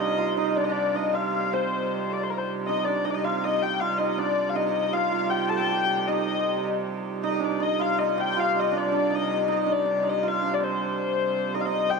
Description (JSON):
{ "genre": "medieval dance", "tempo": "158 BPM", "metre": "3/4", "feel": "straight", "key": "C dorian", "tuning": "A4 = 435 Hz", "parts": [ { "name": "dark hurdy-gurdy", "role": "melody", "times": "0.0-12.0 s", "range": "Bb4 to A5", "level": "-25 LUFS", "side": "left 8 dB", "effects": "none" }, { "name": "hammered dulcimer", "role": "second line", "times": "0.0-12.0 s", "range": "C4 to A4", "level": "-28 LUFS", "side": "right 14 dB", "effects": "none" }, { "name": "clear hurdy-gurdy", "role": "drone", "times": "0.0-12.0 s", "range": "C3 to G3", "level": "-31 LUFS", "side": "right 4 dB", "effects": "none" } ], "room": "moderate plate reverb, RT60 3.5 s", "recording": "1960s-style stereo with parts hard left and right", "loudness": "-23 LUFS", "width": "side -4 dB against mid", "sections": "0.0-2.7 A section; 2.7-11.7 A section", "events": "none", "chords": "none" }